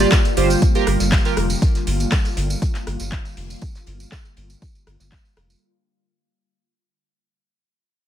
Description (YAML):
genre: progressive house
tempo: 120 BPM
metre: 4/4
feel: straight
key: G minor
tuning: A4 = 440 Hz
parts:
  - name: airy breathy pad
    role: sustained chords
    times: 0.0-5.6 s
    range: D3 to F4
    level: -25 LUFS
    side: left 2 dB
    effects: chorus, phaser, sidechain pumping
  - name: chorused polysynth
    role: stabs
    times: 0.0-1.3 s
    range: F4 to D5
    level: -21 LUFS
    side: right 6 dB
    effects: sidechain pumping, ping-pong delay
  - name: round analog bass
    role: bass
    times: 0.0-5.6 s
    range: F1 to G1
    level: -22 LUFS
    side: equal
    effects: sidechain pumping
  - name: deep house drum kit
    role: drums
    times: 0.0-5.6 s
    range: handclaps, hi-hat, rim click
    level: -26 LUFS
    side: equal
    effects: overdrive, low-pass filter on hats, low-pass filter on cymbals, low-pass filter on snare
  - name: tambourine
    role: percussion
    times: 0.0-5.6 s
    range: none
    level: -32 LUFS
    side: right 4 dB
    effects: none
  - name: damped 70s drum kit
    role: drums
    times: 0.1-5.5 s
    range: hi-hat, snare drum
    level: -38 LUFS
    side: left 4 dB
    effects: none
  - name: electronic kick drum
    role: drums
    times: 0.1-5.2 s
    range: none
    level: -18 LUFS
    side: equal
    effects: overdrive
room: light reverb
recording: none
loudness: -17 LUFS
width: side -10 dB against mid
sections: 0.0-5.6 A section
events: fade-out 0.0-5.6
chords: 0.0 Gm7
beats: 0.12 0.62 1.12 | 1.62 2.12 2.62 3.12 | 3.62 4.12 4.62 5.12